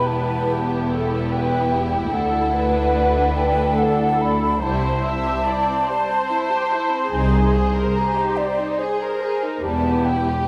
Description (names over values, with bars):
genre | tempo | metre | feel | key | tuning
cinematic, emotional film score for orchestra | 72 BPM | 3/4 | rubato | unclear | A4 = 440 Hz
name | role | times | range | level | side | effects
muted symphonic violin section | melody | 0.0-10.5 s | G4 to C5 | -33 LUFS | equal | none
mellow hollow concert flute | second line | 0.0-10.5 s | C5 to B5 | -25 LUFS | equal | none
muted symphonic violin section | second line | 0.0-10.5 s | G3 to Bb4 | -30 LUFS | equal | none
muted symphonic viola section | accompaniment | 0.0-10.5 s | G4 to E5 | -27 LUFS | equal | none
muted symphonic cello section | bass | 0.0-10.3 s | C2 to E2 | -28 LUFS | equal | none
muted symphonic double bass section | bass | 0.0-10.3 s | E1 to D2 | -27 LUFS | equal | none
room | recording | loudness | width
wet scoring stage reverb, RT60 1.9 s | none | -20 LUFS | mono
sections
0.0-10.5 A section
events
none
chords
0.0 Em; 2.1 Dadd9; 4.6 C; 7.1 Abadd9/C; 9.6 Em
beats
0.49 1.31 | 2.13 2.95 3.79 | 4.62 5.44 6.27 | 7.12 7.95 8.78 | 9.63 10.48